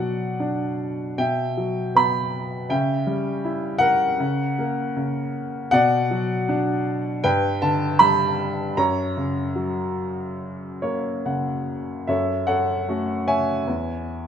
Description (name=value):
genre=classical, lyrical solo piano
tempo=68-83 BPM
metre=4/4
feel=rubato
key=unclear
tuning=A4 = 440 Hz
part: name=clear upright piano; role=solo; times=0.0-14.3 s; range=E2 to B5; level=-21 LUFS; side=equal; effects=none
room=moderate recital hall reverb, RT60 1.4 s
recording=minimal, uncompressed stereo recording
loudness=-21 LUFS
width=side -8 dB against mid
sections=0.0-12.1 A section; 12.1-14.3 B section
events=upright piano fill 10.4-12.1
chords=0.0 Bm; 1.2 Emadd9/B; 2.7 C#dim; 4.2 F#/C#; 5.7 Bm; 7.2 G; 8.8 F#; 12.1 F#m; 13.7 C#m/E